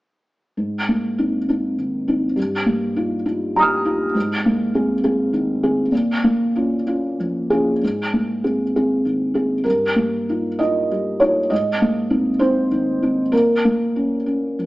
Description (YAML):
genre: neoclassical minimalist piano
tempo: 61-69 BPM (dotted quarters)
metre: 6/8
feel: rubato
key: Ab major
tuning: A4 = 440 Hz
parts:
  - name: felt-muted upright piano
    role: solo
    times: 0.6-14.7 s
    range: G2 to F6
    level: -17 LUFS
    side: equal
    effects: none
room: moderate stone room reverb, RT60 1.1 s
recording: band playing live in one room, small speaker sound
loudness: -17 LUFS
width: side -18 dB against mid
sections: 0.6-7.8 A section; 7.8-14.7 B section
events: none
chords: 0.6 Abadd9; 2.4 Ebadd9/G; 4.1 Abadd9; 5.9 Bbm; 7.8 Abadd9; 9.6 Ebadd9/G; 11.5 Abadd9; 13.3 Bbm